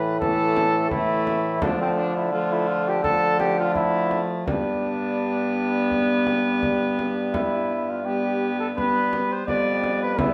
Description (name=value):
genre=classical, renaissance-style consort dance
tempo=84 BPM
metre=4/4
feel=straight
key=unclear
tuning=A4 = 440 Hz
part: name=mellow cornet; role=melody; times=0.0-10.3 s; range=C4 to D5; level=-28 LUFS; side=equal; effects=none
part: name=warm viola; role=second line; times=0.0-10.3 s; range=A3 to B3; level=-29 LUFS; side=equal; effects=none
part: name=clear trombone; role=accompaniment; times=0.0-10.3 s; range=E3 to G3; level=-30 LUFS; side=equal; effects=none
part: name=warm bassoon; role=bass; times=0.0-10.3 s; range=E2 to D3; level=-29 LUFS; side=equal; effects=none
part: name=frame drum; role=percussion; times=0.2-10.3 s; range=none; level=-34 LUFS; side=equal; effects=none
room=wet stone room reverb, RT60 1.3 s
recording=none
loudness=-23 LUFS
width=mono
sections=0.0-10.3 A section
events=none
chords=0.0 A5; 1.6 Dm; 4.5 G